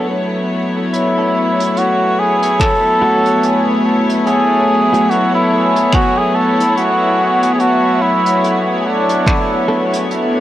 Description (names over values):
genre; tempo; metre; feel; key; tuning
ambient dub; 72 BPM; 4/4; swing 58% on 16ths; F# minor; A4 = 440 Hz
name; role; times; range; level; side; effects
warm studio string section; sustained chords; 0.0-10.4 s; F#3 to C#5; -16 LUFS; left 1 dB; cassette tape
clean electric guitar; stabs; 0.0-10.4 s; A3 to A4; -22 LUFS; right 1 dB; spring reverb, cassette tape, dub echo
trumpet with cup mute; melody; 0.9-9.7 s; D4 to A4; -14 LUFS; equal; cassette tape, dub echo
soft brush drum kit; drums; 0.9-10.3 s; finger snaps, hi-hat; -26 LUFS; right 2 dB; cassette tape, dub echo
electronic kick drum; drums; 2.6-9.5 s; none; -16 LUFS; equal; cassette tape
room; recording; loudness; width
moderate lush hall reverb, RT60 2.0 s, small room ambience; home recording on cassette; -12 LUFS; side -13 dB against mid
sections
0.0-10.4 A section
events
none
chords
0.0 B7(no3); 7.6 Bm7